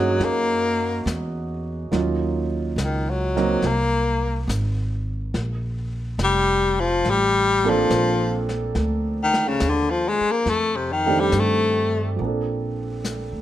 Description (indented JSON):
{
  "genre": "jazz ballad",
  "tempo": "70 BPM",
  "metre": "4/4",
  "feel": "swing 69% on 8ths",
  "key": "Bb major",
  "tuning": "A4 = 439 Hz",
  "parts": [
    { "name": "bright baritone saxophone", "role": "melody", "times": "0.0-12.1 s", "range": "C3 to Bb3", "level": "-20 LUFS", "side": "left 3 dB", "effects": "plate reverb" },
    { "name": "warm concert grand piano", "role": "accompaniment", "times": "0.0-13.4 s", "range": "Eb3 to Bb4", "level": "-26 LUFS", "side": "right 5 dB", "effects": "none" },
    { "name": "upright bass", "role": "bass", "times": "0.0-13.4 s", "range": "F1 to G2", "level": "-25 LUFS", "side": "equal", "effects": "none" },
    { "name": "vintage brush drum kit", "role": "drums", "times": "0.2-13.4 s", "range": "brushed snare drum, hi-hat, snare drum", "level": "-32 LUFS", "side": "left 2 dB", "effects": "none" }
  ],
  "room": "light reverb",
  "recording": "none",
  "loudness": "-20 LUFS",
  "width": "side -12 dB against mid",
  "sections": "0.0-12.2 A section; 12.2-13.4 B section",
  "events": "baritone saxophone solo 0.0-12.2",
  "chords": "0.0 Gb69; 1.9 Ebm7; 3.6 Abadd9; 5.3 Bbmaj7; 10.5 F13; 12.2 Bbmaj7",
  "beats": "0.20 1.06 | 1.92 2.78 3.63 4.48 | 5.34 6.19 7.04 7.90 | 8.76 9.61 10.47 11.33 | 12.19 13.05"
}